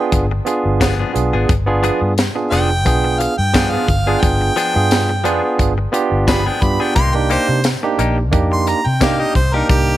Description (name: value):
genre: straight-eighth soul blues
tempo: 88 BPM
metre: 4/4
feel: swing 55% on 16ths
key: unclear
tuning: A4 = 440 Hz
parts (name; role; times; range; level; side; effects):
- bright harmonica; second line; 0.0-10.0 s; G4 to C6; -20 LUFS; right 1 dB; none
- barky tine electric piano; accompaniment; 0.0-10.0 s; Bb3 to Bb4; -19 LUFS; right 4 dB; medium stereo tremolo
- direct-recorded clean electric guitar; stabs; 0.1-9.9 s; F3 to Ab4; -24 LUFS; left 6 dB; harmonic tremolo
- vintage muted fingered electric bass; bass; 0.1-10.0 s; F1 to C3; -18 LUFS; left 1 dB; none
- tight funk drum kit; drums; 0.1-9.9 s; hi-hat, kick drum, snare drum, tambourine; -18 LUFS; left 1 dB; none
room: light reverb, small room ambience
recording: none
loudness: -13 LUFS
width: side -14 dB against mid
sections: 0.0-10.0 A section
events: harmonica solo 0.0-10.0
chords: 0.0 G7b9; 7.0 Cm7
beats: 0.12 0.81 | 1.49 2.17 2.86 3.54 | 4.23 4.91 5.59 6.28 | 6.96 7.65 8.33 9.01 | 9.70